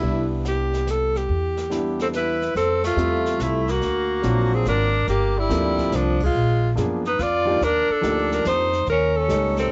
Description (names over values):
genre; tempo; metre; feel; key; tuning
jazz, small-group swing and bop; 142 BPM; 3/4; swing 67% on 8ths; F major; A4 = 440 Hz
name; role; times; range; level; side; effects
clear alto saxophone; melody; 0.0-9.7 s; D4 to D5; -26 LUFS; equal; cassette tape, plate reverb
warm concert grand piano; accompaniment; 0.0-9.7 s; F3 to E5; -29 LUFS; equal; cassette tape, plate reverb
upright bass; bass; 0.0-9.7 s; G1 to Gb2; -27 LUFS; equal; none
jazz brush drum kit; drums; 0.0-9.7 s; brushed snare drum, crash cymbal, hi-hat, kick drum, ride cymbal, snare drum; -38 LUFS; equal; cassette tape
clear tenor saxophone; second line; 2.0-9.7 s; F3 to F4; -27 LUFS; equal; cassette tape, plate reverb
room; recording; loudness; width
moderate booth ambience, RT60 0.2 s; home recording on cassette, nothing above 7.9 kHz; -22 LUFS; mono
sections
0.0-2.5 A section; 2.5-9.7 B section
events
band accent 2.8, 6.1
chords
0.0 Cmaj7; 2.5 Fmaj7; 3.8 D7alt; 5.1 Gm11; 6.3 Bb7b9; 7.6 Ebmaj7; 8.9 Eb7#11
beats
| 0.02 0.44 0.86 | 1.28 1.71 2.13 | 2.55 2.97 3.39 | 3.81 4.24 4.66 | 5.08 5.50 5.92 | 6.34 6.76 7.18 | 7.61 8.03 8.45 | 8.87 9.29 9.71